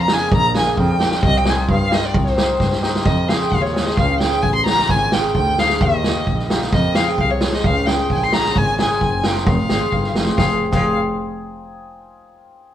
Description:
klezmer; 131 BPM; 2/4; straight; C minor, F minor from 3.1 s; A4 = 442 Hz
dark violin; melody; 0.0-10.9 s; C5 to C6; -20 LUFS; equal
cimbalom; accompaniment; 0.1-10.9 s; Bb3 to Ab4; -24 LUFS; left 2 dB
street-band drum kit; drums; 0.1-10.8 s; crash cymbal, kick drum, snare drum; -19 LUFS; right 1 dB
rich double bass; bass; 0.3-10.9 s; F1 to G2; -22 LUFS; equal
moderate studio reverb, RT60 0.9 s; band playing live in one room; -15 LUFS; side -11 dB against mid
0.0-3.1 A section; 3.1-10.4 B section
drum fill 2.6-3.1
0.0 Bb; 1.2 Cm; 3.1 Fm; 4.0 Db; 4.9 Ab; 5.8 Eb; 6.7 Fm; 7.6 Db; 8.6 Ab; 9.5 Fm

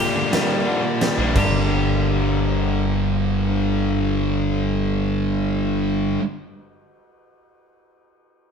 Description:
post-rock; 88 BPM; 3/4; straight; G minor; A4 = 440 Hz
clean electric guitar; arpeggios; 0.0-6.2 s; G2 to G4; -27 LUFS; left 2 dB
fuzz guitar; riff; 0.0-6.2 s; G2 to D4; -22 LUFS; left 4 dB; distortion
thick fuzz guitar; riff; 0.0-6.2 s; G2 to D4; -26 LUFS; right 6 dB; distortion
huge arena drum kit; drums; 0.3-1.5 s; crash cymbal, kick drum, ride cymbal, snare drum; -26 LUFS; right 1 dB
growling fingered electric bass; bass; 1.2-6.2 s; G1 to Bb1; -24 LUFS; right 1 dB; overdrive
moderate large studio reverb, RT60 1.1 s; band playing live in one room; -18 LUFS; side -6 dB against mid
0.0-1.7 A section; 1.7-5.8 B section
0.0 Gm/Bb; 1.4 Gm

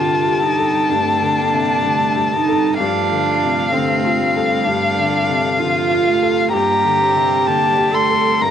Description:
neoclassical piano and strings; 64 BPM; 4/4; rubato; G minor; A4 = 440 Hz
dark violin; melody; 0.0-8.5 s; F5 to C6; -17 LUFS; left 3 dB; cassette tape
warm cello; second line; 0.0-8.5 s; C4 to Bb4; -20 LUFS; right 8 dB; cassette tape
clear upright piano; accompaniment; 0.0-8.5 s; G2 to A4; -22 LUFS; left 7 dB; cassette tape
warm viola; accompaniment; 0.0-8.5 s; F3 to C4; -26 LUFS; right 9 dB; cassette tape
warm chamber string section; sustained chords; 0.0-8.5 s; G3 to G5; -28 LUFS; left 1 dB; cassette tape
studio reverb; home recording on cassette; -14 LUFS; side -9 dB against mid
0.0-8.5 A section
0.0 Gsus2; 2.8 Dm7/G; 6.5 Gmadd9

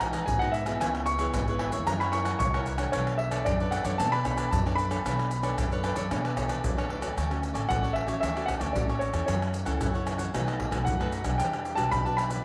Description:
samba and choro; 113 BPM; 4/4; straight; B minor, D major from 7.2 s; A4 = 442 Hz
warm concert grand piano; melody; 0.0-12.4 s; C#5 to C#6; -33 LUFS; equal
cavaquinho; accompaniment; 0.0-12.4 s; D4 to F#5; -40 LUFS; equal
nylon-string guitar; accompaniment; 0.0-12.4 s; B2 to C#5; -38 LUFS; equal
upright bass; bass; 0.0-12.4 s; G#1 to E3; -34 LUFS; equal
maracas, surdo, pandeiro and tamborim; percussion; 0.0-12.4 s; -33 LUFS; equal
moderate plate reverb, RT60 2.6 s; -28 LUFS; mono
0.0-7.2 A section; 7.2-12.4 B section
0.0 Emaj9; 0.8 C#m7; 1.9 F#7; 2.9 Bm9; 7.2 Dmaj7; 9.3 F#m7; 10.3 B7; 11.4 Em9

